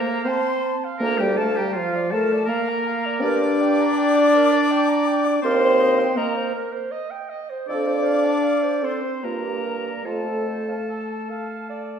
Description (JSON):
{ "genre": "classical, slow romantic movement for wind quintet", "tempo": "72-83 BPM", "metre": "3/4", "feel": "rubato", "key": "unclear", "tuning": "A4 = 438 Hz", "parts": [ { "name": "bright silver concert flute", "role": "melody", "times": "0.0-12.0 s", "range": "F5 to D6", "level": "-30 LUFS", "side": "left 5 dB", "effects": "none" }, { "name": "bright oboe", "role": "second line", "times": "0.0-12.0 s", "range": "F4 to D5", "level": "-26 LUFS", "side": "left 2 dB", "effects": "none" }, { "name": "mellow French horn", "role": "accompaniment", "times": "0.0-12.0 s", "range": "F3 to D4", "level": "-22 LUFS", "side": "right 1 dB", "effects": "none" }, { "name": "warm clarinet", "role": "accompaniment", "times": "0.0-12.0 s", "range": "F4 to C6", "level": "-29 LUFS", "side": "right 4 dB", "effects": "none" }, { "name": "warm bassoon", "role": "bass", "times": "1.0-10.7 s", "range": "D2 to G2", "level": "-26 LUFS", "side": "right 1 dB", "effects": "none" } ], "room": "wet recital hall reverb, RT60 1.5 s", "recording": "heard from further back in the room", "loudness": "-19 LUFS", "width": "side -7 dB against mid", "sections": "0.0-12.0 A section", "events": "none", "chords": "0.0 F; 1.0 Bb/D; 3.2 Gm; 5.4 Cm7/Eb; 7.7 F; 9.2 Gm7; 10.1 F" }